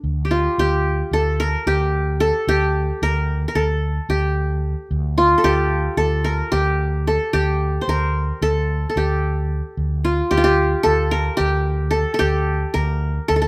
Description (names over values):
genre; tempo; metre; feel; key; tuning
Turkish makam ensemble; 222 BPM (eighths); 9/8; straight; D makam ussak; A4 = 440 Hz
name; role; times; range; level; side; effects
qanun; melody; 0.0-13.5 s; D4 to C5; -22 LUFS; equal; none
fretless electric bass; bass; 0.0-13.5 s; D2; -23 LUFS; equal; none
room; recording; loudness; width
moderate studio reverb, RT60 0.5 s; none; -20 LUFS; mono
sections
0.0-13.5 A section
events
none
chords
none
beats
| 0.04 0.31 0.58 0.85 1.12 1.39 1.67 1.94 2.21 | 2.48 2.75 3.02 3.29 3.56 3.83 4.10 4.37 4.64 | 4.91 5.18 5.45 5.72 5.99 6.26 6.53 6.80 7.07 | 7.34 7.61 7.88 8.15 8.42 8.69 8.96 9.23 9.51 | 9.78 10.05 10.32 10.59 10.86 11.13 11.40 11.67 11.94 | 12.21 12.48 12.75 13.02 13.29